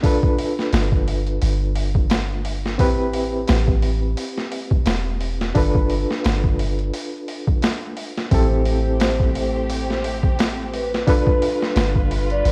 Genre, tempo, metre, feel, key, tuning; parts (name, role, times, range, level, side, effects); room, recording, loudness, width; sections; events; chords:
trip hop; 87 BPM; 4/4; swing 56% on 16ths; A4 = 440 Hz
reed electric piano; accompaniment; 0.0-12.5 s; C4 to B4; -27 LUFS; equal; overdrive, tremolo, vintage 12-bit sampler grit, low-pass filter, tape echo
boom bap sampler-style drum kit; drums; 0.0-12.5 s; hi-hat, kick drum, snare drum; -24 LUFS; equal; overdrive
soft 808-style bass; bass; 0.7-12.5 s; E1 to A1; -24 LUFS; equal
vibraphone with soft mallets; melody; 8.3-12.5 s; B4 to D5; -28 LUFS; equal; tape echo
muted studio string section; sustained chords; 8.3-12.5 s; G3 to B4; -33 LUFS; equal
light reverb, small room ambience; worn, warbling old tape, cassette tape, vinyl crackle, warbly pitch drift; -20 LUFS; mono
0.0-12.5 A section
0.0 G7; 2.8 Am7; 5.6 G7; 8.3 Am7; 11.1 G7